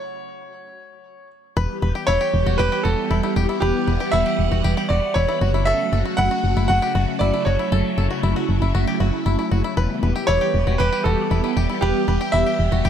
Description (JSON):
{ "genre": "pop", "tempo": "117 BPM", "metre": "4/4", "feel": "straight", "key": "E dorian", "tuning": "A4 = 440 Hz", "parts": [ { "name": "bright concert grand piano", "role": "melody", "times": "0.0-12.8 s", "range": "G4 to F#5", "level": "-23 LUFS", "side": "right 2 dB", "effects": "digital delay" }, { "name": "phased string machine", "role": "sustained chords", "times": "1.6-12.9 s", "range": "C#3 to F#5", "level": "-24 LUFS", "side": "equal", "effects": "ensemble chorus, phaser" }, { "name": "bluegrass banjo", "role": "arpeggios", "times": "1.6-12.9 s", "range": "E4 to B4", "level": "-29 LUFS", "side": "left 6 dB", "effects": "digital delay" }, { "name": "solid FM bass", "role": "bass", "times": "1.6-12.9 s", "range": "E1 to F#1", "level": "-20 LUFS", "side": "equal", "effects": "none" } ], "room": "light reverb, small room ambience", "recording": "none", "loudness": "-18 LUFS", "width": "side -9 dB against mid", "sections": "0.0-1.6 A section; 1.6-12.9 B section", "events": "stop 0.0-1.6", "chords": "0.0 N.C.; 1.6 Em; 5.4 F#m; 9.8 Em" }